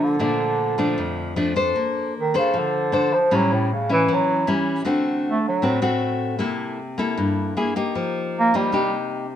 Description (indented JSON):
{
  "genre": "bossa nova",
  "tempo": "155 BPM",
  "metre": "4/4",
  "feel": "straight",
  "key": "Bb major",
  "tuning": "A4 = 440 Hz",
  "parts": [
    { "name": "breathy bass clarinet", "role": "melody", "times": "0.0-5.8, 8.4-8.9 s", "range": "A2 to Bb3", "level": "-21 LUFS", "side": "right 2 dB", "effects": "none" },
    { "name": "nylon-string guitar", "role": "accompaniment", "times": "0.0-9.4 s", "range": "F2 to C5", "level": "-21 LUFS", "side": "left 2 dB", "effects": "none" }
  ],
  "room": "moderate echo chamber reverb, RT60 1.5 s",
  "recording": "minimal, uncompressed stereo recording",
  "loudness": "-19 LUFS",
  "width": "side -10 dB against mid",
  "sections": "0.0-1.8 A section; 1.8-9.4 B section",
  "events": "bass clarinet solo 1.8-9.4",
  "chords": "0.2 Bbmaj9; 3.3 A7; 4.9 D7; 6.4 C6; 7.6 Ebadd11/Bb; 8.0 F9sus4",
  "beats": "| 0.20 0.59 0.97 1.36 | 1.75 2.14 2.53 2.91 | 3.30 3.69 4.08 4.46 | 4.85 5.24 5.62 6.01 | 6.40 6.79 7.17 7.56 | 7.95 8.34 8.72 9.11"
}